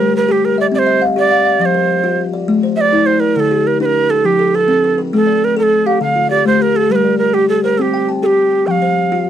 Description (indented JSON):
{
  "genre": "southern african traditional",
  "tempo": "136 BPM (dotted quarters)",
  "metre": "12/8",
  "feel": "straight",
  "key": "G equiheptatonic",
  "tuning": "A4 = 440 Hz",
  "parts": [
    { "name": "breathy Native American-style cedar flute", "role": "melody", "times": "0.0-9.3 s", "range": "G4 to G5+28c", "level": "-14 LUFS", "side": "right 5 dB", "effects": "none" },
    { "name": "buzzing kalimba", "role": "arpeggios", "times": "0.0-9.3 s", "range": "D3 to A5-29c", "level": "-15 LUFS", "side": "left 4 dB", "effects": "none" }
  ],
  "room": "little or no reverb",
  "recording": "dry, close 1970s-style studio recording",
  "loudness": "-11 LUFS",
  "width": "side -10 dB against mid",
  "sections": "0.0-6.9 A section; 6.9-9.3 B section",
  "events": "none",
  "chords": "0.0 Gm; 0.7 C; 1.6 F5; 2.5 Am; 3.4 D5; 4.3 F; 5.1 Gm9/A (rootless); 6.0 Dm; 6.9 Gm; 7.8 C5; 8.7 F5"
}